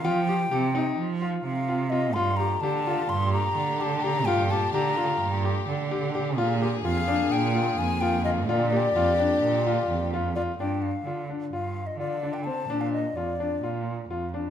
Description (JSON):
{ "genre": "contemporary instrumental, chamber music in an uneven meter", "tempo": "256 BPM (eighths)", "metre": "9/8", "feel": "straight", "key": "G minor", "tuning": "A4 = 440 Hz", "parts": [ { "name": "bright baroque flute", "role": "melody", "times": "0.0-13.7 s", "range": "D5 to C6", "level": "-28 LUFS", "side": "left 2 dB", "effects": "none" }, { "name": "clear grand piano", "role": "arpeggios", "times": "0.0-14.5 s", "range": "C4 to G4", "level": "-29 LUFS", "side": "left 4 dB", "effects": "none" }, { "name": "warm cello", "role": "bass", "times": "0.0-14.5 s", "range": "F2 to F3", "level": "-28 LUFS", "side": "right 4 dB", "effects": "none" }, { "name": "dark studio string section", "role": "sustained chords", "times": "2.2-10.6 s", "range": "Bb2 to Ab4", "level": "-33 LUFS", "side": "left 4 dB", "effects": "none" } ], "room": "moderate recital hall reverb, RT60 1.4 s", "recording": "none", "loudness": "-23 LUFS", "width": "side -9 dB against mid", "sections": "0.0-10.6 A section; 10.6-14.5 B section", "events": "none", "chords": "0.0 Fsus2; 2.2 Gmadd9; 6.4 Bb7; 10.6 G7(no3); 12.7 Bb", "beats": "| 0.04 0.28 0.51 0.75 0.98 1.22 1.45 1.69 1.92 | 2.16 2.39 2.63 2.86 3.10 3.33 3.56 3.80 4.03 | 4.27 4.50 4.74 4.97 5.21 5.44 5.68 5.91 6.14 | 6.38 6.61 6.85 7.08 7.32 7.55 7.78 8.02 8.25 | 8.49 8.72 8.95 9.19 9.42 9.66 9.89 10.12 10.36 | 10.59 10.82 11.06 11.29 11.53 11.76 12.00 12.23 12.46 | 12.70 12.93 13.17 13.40 13.63 13.87 14.10 14.34" }